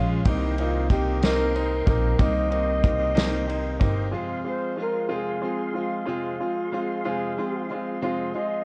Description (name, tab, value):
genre	six-eight pop ballad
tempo	62 BPM (dotted quarters)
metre	6/8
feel	straight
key	F minor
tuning	A4 = 440 Hz
part	breathy flugelhorn	melody	0.0-8.6 s	F4 to F5	-30 LUFS	equal	none
part	clear concert grand piano	accompaniment	0.0-8.6 s	Ab3 to F4	-32 LUFS	equal	none
part	tonewheel organ	sustained chords	0.0-8.6 s	Db4 to C6	-40 LUFS	equal	chorus vibrato, slow rotary speaker
part	direct-recorded clean electric guitar	arpeggios	0.0-8.6 s	F2 to G4	-37 LUFS	equal	none
part	upright bass	bass	0.0-4.1 s	G1 to C2	-28 LUFS	equal	none
part	unplugged drum kit	drums	0.3-4.0 s	kick drum, ride cymbal, snare drum	-27 LUFS	equal	vintage 12-bit sampler grit
room	moderate studio reverb, RT60 0.5 s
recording	worn, warbling old tape, cassette tape, warbly pitch drift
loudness	-25 LUFS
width	mono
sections	0.0-4.1 A section; 4.1-8.6 B section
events	none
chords	0.3 Cm7; 4.1 Fm